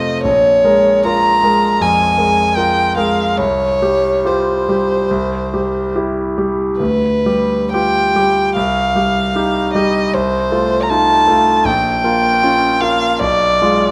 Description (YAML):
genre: classical, romantic duo for violin and grand piano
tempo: 61-81 BPM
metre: 4/4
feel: rubato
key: unclear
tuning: A4 = 440 Hz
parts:
  - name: rich violin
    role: melody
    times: 0.0-13.9 s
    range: B4 to Bb5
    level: -16 LUFS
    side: equal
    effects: none
  - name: bright concert grand piano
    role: accompaniment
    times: 0.0-13.9 s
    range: Bb1 to C5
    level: -19 LUFS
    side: equal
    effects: none
room: moderate recital hall reverb, RT60 1.7 s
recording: none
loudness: -15 LUFS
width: mono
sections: 0.0-13.9 A section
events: none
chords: 0.2 Bbm7; 3.4 Csus4; 5.1 C; 6.8 G7/D; 8.6 Cm; 10.1 F7/C; 11.7 Bbm; 13.2 Bdim7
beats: | 0.24 1.06 1.81 2.57 | 3.39 4.26 5.11 5.96 | 6.80 7.72 8.56 9.35 | 10.13 10.89 11.66 12.43 | 13.20